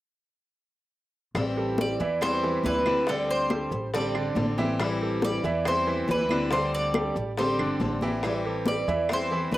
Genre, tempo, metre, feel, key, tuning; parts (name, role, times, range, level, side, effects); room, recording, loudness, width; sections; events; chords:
latin, Cuban son and guajira; 140 BPM; 4/4; straight; A4 = 441 Hz
upright bass; bass; 1.3-9.6 s; G1 to E2; -34 LUFS; equal
picked steel-string acoustic guitar; accompaniment; 1.4-9.6 s; D3 to G4; -29 LUFS; left 1 dB
bongos; percussion; 1.4-9.6 s; -34 LUFS; left 3 dB
claves; percussion; 1.4-9.3 s; -38 LUFS; right 6 dB
congas; percussion; 1.4-9.6 s; -32 LUFS; left 1 dB
bright concert grand piano; arpeggios; 1.6-9.6 s; D3 to E5; -32 LUFS; right 3 dB
Cuban tres; melody; 1.8-9.6 s; A4 to D5; -28 LUFS; right 1 dB
little or no reverb; recorded outdoors, with no room sound; -24 LUFS; side -15 dB against mid
1.4-9.6 A section
1.4 Am7; 6.5 D9sus4; 8.2 Am7